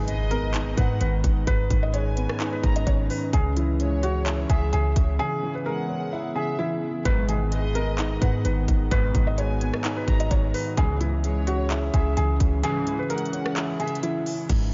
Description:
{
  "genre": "hip hop, trap",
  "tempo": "129 BPM",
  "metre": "4/4",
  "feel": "half-time",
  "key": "unclear",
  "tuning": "A4 = 444 Hz",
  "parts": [
    { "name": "felt-muted upright piano", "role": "melody", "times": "0.0-14.5 s", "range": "E4 to D#5", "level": "-32 LUFS", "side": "equal", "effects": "diffuse ambient delay" },
    { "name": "dark grand piano", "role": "accompaniment", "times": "0.0-14.7 s", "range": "G#2 to E4", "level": "-32 LUFS", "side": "equal", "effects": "low-pass filter" },
    { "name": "warbly tape-like pad", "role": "sustained chords", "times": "0.0-14.5 s", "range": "D#3 to B4", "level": "-37 LUFS", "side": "equal", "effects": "chorus, built-in reverb" },
    { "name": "warm 808-style bass", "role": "bass", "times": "0.0-14.7 s", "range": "G#1 to G#2", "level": "-28 LUFS", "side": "equal", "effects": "none" },
    { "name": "impact", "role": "sound effects", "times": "0.0-1.5 s", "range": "none", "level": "barely audible", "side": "none", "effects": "none" },
    { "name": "dark studio violin section", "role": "second line", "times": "0.1-14.0 s", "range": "C#5 to A#5", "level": "-40 LUFS", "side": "equal", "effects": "diffuse ambient delay" },
    { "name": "trap drum kit", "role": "drums", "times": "0.1-14.6 s", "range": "crash cymbal, handclaps, hi-hat, kick drum, rim click", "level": "-28 LUFS", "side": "equal", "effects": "none" },
    { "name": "sync-sweep polysynth", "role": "stabs", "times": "7.1-13.0 s", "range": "B1 to E3", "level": "-40 LUFS", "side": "equal", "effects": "none" }
  ],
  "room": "moderate cathedral reverb, RT60 5.7 s",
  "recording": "dreamy mix soaked in reverb, nothing above 7.5 kHz",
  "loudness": "-24 LUFS",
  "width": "mono",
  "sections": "0.0-14.5 A section",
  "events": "impact 0.0-1.5; break 5.2-7.1, 12.6-14.5",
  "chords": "0.0 G#m; 3.3 C#m; 7.1 G#m; 10.8 C#m"
}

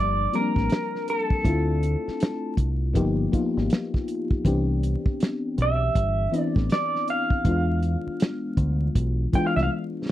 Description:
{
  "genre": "R&B, neo-soul",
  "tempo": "80 BPM",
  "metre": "4/4",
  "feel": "swing 63% on 16ths",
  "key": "unclear",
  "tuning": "A4 = 440 Hz",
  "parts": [
    { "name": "electric guitar through a small old amp", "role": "melody", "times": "0.0-9.7 s", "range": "A4 to G5", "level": "-27 LUFS", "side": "right 1 dB", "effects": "slapback echo" },
    { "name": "mellow FM electric piano", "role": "accompaniment", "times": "0.0-10.1 s", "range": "E3 to Bb4", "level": "-27 LUFS", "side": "left 3 dB", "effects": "chorus" },
    { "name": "deep dub fingered electric bass", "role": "bass", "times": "0.0-9.7 s", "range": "G1 to E2", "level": "-24 LUFS", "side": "equal", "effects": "none" },
    { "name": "warm soul drum kit", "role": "drums", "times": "0.3-9.6 s", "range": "hi-hat, kick drum, snare drum", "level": "-24 LUFS", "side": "equal", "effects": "none" }
  ],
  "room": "little or no reverb",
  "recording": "dry, close 1970s-style studio recording, vinyl crackle",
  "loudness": "-22 LUFS",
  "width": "side -13 dB against mid",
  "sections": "0.0-10.1 A section",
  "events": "drum fill 9.7-10.1",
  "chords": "0.0 Bb6; 1.4 Dm9; 2.9 G7alt; 4.4 Cmaj9; 7.4 E7b9"
}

